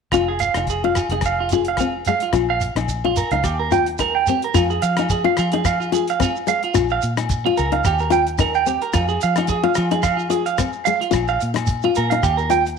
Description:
highlife guitar band; 109 BPM; 4/4; swing 54% on 16ths; F minor; A4 = 440 Hz
nylon-string guitar; accompaniment; 0.1-12.6 s; Ab3 to F4; -22 LUFS; left 13 dB
clean electric guitar; arpeggios; 0.1-12.6 s; F4 to G5; -20 LUFS; right 10 dB; slapback echo
fingered electric bass; bass; 0.1-12.8 s; F1 to F3; -25 LUFS; equal
damped 70s drum kit; drums; 0.1-12.8 s; hi-hat, kick drum, rim click; -27 LUFS; left 3 dB
agogo bells; percussion; 0.1-12.4 s; -30 LUFS; left 12 dB
shekere; percussion; 0.1-12.7 s; -26 LUFS; right 3 dB
moderate plate reverb, RT60 1.4 s, small room ambience; 1960s-style stereo with parts hard left and right; -17 LUFS; side -6 dB against mid
0.1-4.5 A section; 4.5-12.8 B section
0.1 Fm7; 2.3 Bb5; 3.4 Eb; 4.5 Fm7; 6.7 Bbm; 7.8 Eb; 8.9 Fm7; 11.1 Bb5; 12.2 Eb

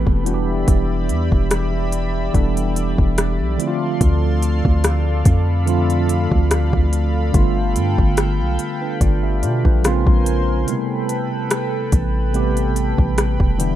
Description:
contemporary R&B; 72 BPM; 4/4; swing 54% on 16ths; A minor; A4 = 442 Hz
tine electric piano; accompaniment; 0.0-13.8 s; B2 to E5; -22 LUFS; right 1 dB; medium stereo tremolo
chorused pulse-width pad; sustained chords; 0.0-13.8 s; E4 to C6; -26 LUFS; right 1 dB; sidechain pumping
long sustained 808-style bass; bass; 0.0-13.8 s; E1 to B2; -19 LUFS; equal
smooth R&B drum kit; drums; 0.1-13.8 s; hi-hat, kick drum, rim click; -18 LUFS; equal; overdrive
little or no reverb; rough home demo mix; -16 LUFS; side -12 dB against mid
0.0-13.8 A section
break 10.7-11.5
0.3 Em7; 3.6 Dm7; 7.3 G9; 9.8 Bbm9; 10.7 Am9

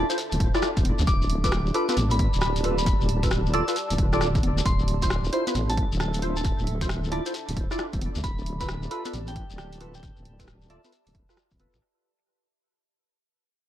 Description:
UK garage, two-step garage; 134 BPM; 4/4; swing 64% on 16ths; A4 = 440 Hz
soft synth bell; melody; 0.0-10.9 s; E5 to E6; -33 LUFS; equal; chorus, dub echo
percussive organ stab; stabs; 0.0-11.8 s; E4 to D5; -30 LUFS; equal; ensemble chorus, dub echo
deep soft wobble bass; bass; 0.0-11.8 s; D1 to D2; -26 LUFS; equal; chorus
warbly tape-like pad; texture; 0.0-11.8 s; D4 to A5; -36 LUFS; right 2 dB; chorus, built-in reverb, sidechain pumping
punchy analog drum machine; drums; 0.1-11.8 s; congas, finger snaps, hi-hat, rim click; -33 LUFS; equal; tape echo
shekere; percussion; 0.1-11.8 s; -36 LUFS; left 5 dB
electronic kick drum; drums; 0.4-11.6 s; -26 LUFS; equal
digital ambience; echo-heavy mix; -22 LUFS; side -12 dB against mid
0.0-11.8 A section
drop 0.0-11.8; fade-out 4.7-11.8
0.0 Dm9; 0.8 G7/D; 4.7 Dm9; 8.0 G7/D

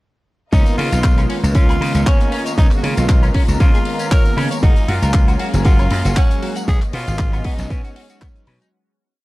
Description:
nu-disco, nu disco; 117 BPM; 4/4; swing 54% on 16ths; Db mixolydian; A4 = 440 Hz
raspy tenor saxophone; melody; 0.5-8.5 s; Db4 to Bb4; -26 LUFS; equal; dub echo
warm analog pad; accompaniment; 0.5-8.7 s; Eb3 to F5; -25 LUFS; equal; chorus, sidechain pumping
rich symphonic string section; sustained chords; 0.5-8.7 s; Gb3 to Bb5; -31 LUFS; left 2 dB; sidechain pumping
electric guitar at the edge of break-up; riff; 0.5-8.7 s; Cb4 to Gb5; -28 LUFS; equal; lush chorus
glassy slap bass; bass; 0.5-8.6 s; Gb1 to Db3; -18 LUFS; equal; tube saturation, sidechain pumping
damped 70s drum kit; drums; 0.5-8.7 s; handclaps, hi-hat, tambourine, woodblock; -29 LUFS; left 2 dB
electronic kick drum; drums; 0.5-8.3 s; -14 LUFS; equal
studio reverb; dark, warm production; -13 LUFS; side -19 dB against mid
0.5-8.7 drop
drop 0.5-8.7; fade-out 6.0-8.7
0.5 Db13; 4.6 Gbmaj9; 6.7 Cb69

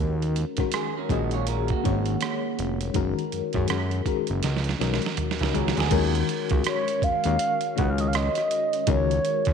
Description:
R&B, neo-soul; 81 BPM; 4/4; swing 61% on 16ths; Eb minor; A4 = 440 Hz
FM electric piano with tremolo; accompaniment; 0.0-9.5 s; Eb3 to Db5; -28 LUFS; left 10 dB; phaser
fat analog bass; bass; 0.0-9.5 s; F1 to Gb2; -26 LUFS; right 1 dB
boom bap sampler-style drum kit; drums; 0.2-9.5 s; crash cymbal, hi-hat, kick drum, rim click, snare drum, toms; -29 LUFS; right 5 dB
electric guitar through a small old amp; second line; 0.7-6.1 s; Bb3 to Eb5; -32 LUFS; right 14 dB; spring reverb
mellow horn-like synth lead; melody; 6.7-9.5 s; Db5 to Gb5; -24 LUFS; right 2 dB; chorus
light reverb, digital ambience; 1960s-style stereo with parts hard left and right; -22 LUFS; side -7 dB against mid
0.0-5.9 A section; 5.9-9.5 B section
drum fill 4.4-5.9
0.0 Ebm9; 3.0 Gbadd9; 4.4 Db9sus4; 5.9 Ebm9; 8.9 Dbsus4

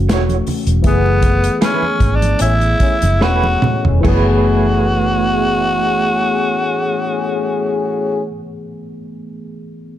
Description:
lush 1970s-style soul; 71-81 BPM; 4/4; swing 54% on 16ths; F# minor; A4 = 440 Hz
barky tine electric piano; accompaniment; 0.0-10.0 s; E3 to G#4; -21 LUFS; left 2 dB; phaser
vintage muted fingered electric bass; bass; 0.0-8.3 s; E1 to A1; -16 LUFS; equal
electric guitar through a small old amp; riff; 0.1-8.4 s; A3 to C#5; -24 LUFS; right 8 dB; tremolo
warm soul drum kit; drums; 0.1-4.3 s; crash cymbal, hi-hat, kick drum, snare drum, toms; -18 LUFS; equal
congas; percussion; 0.1-4.4 s; -26 LUFS; right 4 dB
growling tenor saxophone; melody; 0.9-8.2 s; B3 to F#4; -18 LUFS; equal
muted trombone section; stabs; 2.4-8.2 s; A2 to G#4; -22 LUFS; left 4 dB
studio reverb; dark, warm production; -13 LUFS; side -12 dB against mid
0.0-4.0 A section; 4.0-7.4 B section
slowing down 0.0-4.0; band accent 0.8-4.0; drum fill 3.2-4.0
0.0 F#m7; 0.8 F#m11

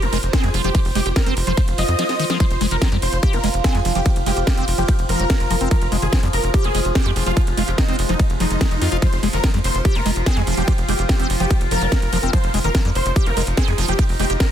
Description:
psychedelic trance; 145 BPM; 4/4; straight; F minor; A4 = 440 Hz
dense compressed supersaw; melody; 0.0-14.5 s; Eb4 to Eb5; -25 LUFS; equal; phaser, sidechain pumping, tape echo
liquid acid bass; riff; 0.0-14.3 s; Eb3 to G4; -25 LUFS; moving between left 7 dB and right 6 dB; phaser, auto-pan, cassette tape, sidechain pumping, tape echo
tight sequencer bass; bass; 0.0-14.4 s; F1 to F2; -22 LUFS; equal
techno drum kit; drums; 0.0-14.5 s; hi-hat, ride cymbal, snare drum; -27 LUFS; right 1 dB
warbly tape-like pad; texture; 0.0-14.5 s; F4 to C6; -31 LUFS; right 2 dB; chorus, built-in reverb, sidechain pumping
electronic kick drum; drums; 0.3-14.5 s; -18 LUFS; equal
swell; sound effects; 1.7-2.4 s; -30 LUFS; left 1 dB
overtone-sweeping drone; sustained chords; 3.1-14.5 s; F3 to F4; -28 LUFS; right 1 dB; chorus, built-in reverb, phaser, sidechain pumping
little or no reverb; dense, heavily limited modern master; -16 LUFS; side -10 dB against mid
0.0-14.5 A section
swell 1.7-2.4; drum fill 2.0-2.4
0.0 F5

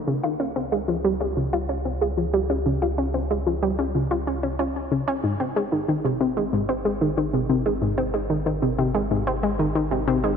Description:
ambient, sequencer-driven space music; 93 BPM; 4/4; straight; Ab major; A4 = 435 Hz
warm sub bass; bass; 0.0-10.4 s; Ab1 to Db2; -31 LUFS; equal
analog pluck; riff; 0.1-10.3 s; Ab2 to F4; -22 LUFS; equal; chorus, ping-pong delay
wet lush hall reverb, RT60 2.8 s; -21 LUFS; side -7 dB against mid
0.0-10.4 A section
filter sweep on synth arpeggio sound 0.0-10.4
0.1 Db; 5.2 Ab

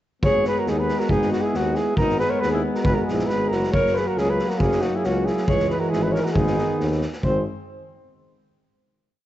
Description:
balkan folk, Balkan brass band; 137 BPM; 2/4; straight; G# minor; A4 = 440 Hz
mellow flugelhorn; melody; 0.2-7.4 s; F#4 to C#5; -24 LUFS; right 1 dB
bright trombone; accompaniment; 0.2-7.4 s; G#3 to B#3; -30 LUFS; left 5 dB
mellow euphonium; accompaniment; 0.2-7.4 s; D#3 to G#3; -28 LUFS; right 3 dB
warm tuba; bass; 0.2-7.4 s; F#1 to D#2; -27 LUFS; equal; tube saturation
street-band drum kit; percussion; 0.2-7.4 s; kick drum, snare drum; -26 LUFS; equal
mellow alto saxophone; second line; 0.3-7.4 s; G#3 to A#4; -28 LUFS; left 4 dB
light reverb; worn, warbling old tape, cassette tape, warbly pitch drift, nothing above 7.9 kHz; -19 LUFS; side -13 dB against mid
0.2-7.2 A section; 7.2-8.1 final chord
0.2 G#m; 3.7 F#; 5.5 C#m; 6.4 G#m; 7.2 G#

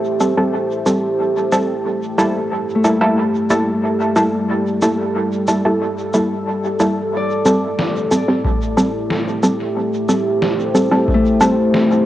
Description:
ambient dub; 91 BPM; 4/4; straight; A4 = 441 Hz
deep dark ambient pad; sustained chords; 0.0-12.1 s; G3 to C5; -20 LUFS; equal; chorus, built-in reverb, cassette tape
filtered dub chord stab; stabs; 0.2-11.5 s; G3 to A4; -18 LUFS; equal; chorus, cassette tape, dub echo
electronic shaker and snare drum; drums; 0.2-11.9 s; -26 LUFS; equal; cassette tape, dub echo
Celtic harp; arpeggios; 2.7-12.1 s; A3 to D5; -20 LUFS; left 2 dB; cassette tape, dub echo
electronic kick drum; drums; 8.4-11.2 s; -20 LUFS; equal; cassette tape
moderate spring reverb, RT60 2.5 s; home recording on cassette, nothing above 10.7 kHz; -15 LUFS; side -13 dB against mid
0.0-7.1 A section; 7.1-12.1 B section
0.0 Am7; 1.9 Gm69; 7.1 Am7

